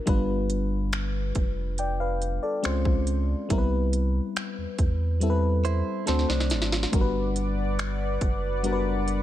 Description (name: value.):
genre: contemporary R&B.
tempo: 70 BPM.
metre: 4/4.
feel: straight.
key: G major.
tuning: A4 = 440 Hz.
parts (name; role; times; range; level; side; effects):
mellow FM electric piano; accompaniment; 0.0-9.2 s; G3 to G5; -28 LUFS; left 3 dB; chorus.
warm sub bass; bass; 0.1-9.2 s; F1 to E2; -27 LUFS; equal; none.
trap drum kit; drums; 0.1-9.2 s; finger snaps, hi-hat, kick drum, snare drum; -27 LUFS; right 1 dB; none.
direct-recorded clean electric guitar; arpeggios; 5.6-6.9 s; F#3 to C5; -33 LUFS; right 9 dB; ping-pong delay.
chorused pulse-width pad; sustained chords; 6.9-9.2 s; B4 to D6; -32 LUFS; equal; sidechain pumping.
room: digital ambience.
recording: none.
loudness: -24 LUFS.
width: side -13 dB against mid.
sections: 0.0-9.2 A section.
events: drum fill 6.1-6.9.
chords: 0.1 G7; 2.6 C#maj7; 3.5 Cmaj7; 6.1 D7; 6.9 Gmaj7.